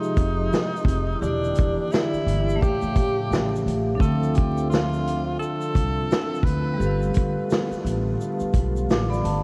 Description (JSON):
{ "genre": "lo-fi hip hop", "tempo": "86 BPM", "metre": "4/4", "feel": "swing 61% on 16ths", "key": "unclear", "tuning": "A4 = 444 Hz", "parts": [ { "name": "breathy tenor saxophone", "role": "melody", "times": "0.0-7.1 s", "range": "D4 to B4", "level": "-32 LUFS", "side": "equal", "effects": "diffuse ambient delay" }, { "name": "vibraphone with hard mallets", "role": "accompaniment", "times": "0.0-9.4 s", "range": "F3 to D6", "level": "-30 LUFS", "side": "equal", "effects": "none" }, { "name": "warm analog pad", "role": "sustained chords", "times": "0.0-9.4 s", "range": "C3 to G4", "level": "-34 LUFS", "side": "equal", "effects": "lush chorus" }, { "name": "vintage drum kit", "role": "drums", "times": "0.0-9.4 s", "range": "hi-hat, kick drum, shaker, snare drum", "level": "-27 LUFS", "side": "equal", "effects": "none" }, { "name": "upright bass", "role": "bass", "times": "0.2-9.4 s", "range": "E1 to A2", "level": "-28 LUFS", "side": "equal", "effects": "none" } ], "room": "light reverb, small room ambience", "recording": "vinyl crackle", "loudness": "-23 LUFS", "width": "mono", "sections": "0.0-9.4 A section", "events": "none", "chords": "0.0 Fm9; 1.2 Em7b5; 2.6 A7b13; 4.0 Dm11; 6.8 G9", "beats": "0.51 | 1.21 1.91 2.60 3.30 | 4.00 4.70 5.39 6.09 | 6.79 7.49 8.19 8.88" }